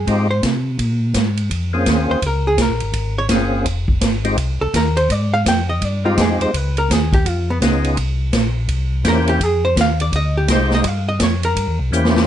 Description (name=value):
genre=soul jazz organ trio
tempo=167 BPM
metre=4/4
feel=swing 63% on 8ths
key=unclear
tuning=A4 = 439 Hz
part: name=archtop guitar, miked and amplified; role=accompaniment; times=0.0-11.8 s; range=Cb4 to G5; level=-20 LUFS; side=equal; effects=none
part: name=mellow tonewheel organ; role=bass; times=0.0-12.3 s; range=F1 to C3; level=-19 LUFS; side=equal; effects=overdrive, stopped rotary speaker
part: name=percussive tonewheel organ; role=melody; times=0.1-12.3 s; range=Ab3 to C5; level=-19 LUFS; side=left 1 dB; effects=slow rotary speaker, overdrive, chorus vibrato
part: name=swinging big-band drum kit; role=drums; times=0.1-12.2 s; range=hi-hat, kick drum, ride cymbal, snare drum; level=-20 LUFS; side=right 2 dB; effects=none
room=light reverb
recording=dark, warm production, nothing above 10.7 kHz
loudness=-15 LUFS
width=side -10 dB against mid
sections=0.0-12.3 A section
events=hollow-body jazz guitar solo 0.0-12.3; drum fill 11.9-12.3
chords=0.0 Fm9; 0.8 Bbm9; 3.7 Fm9; 6.5 Db7; 8.0 C7b9; 9.4 Fm9; 10.8 Eb9; 11.6 C7b9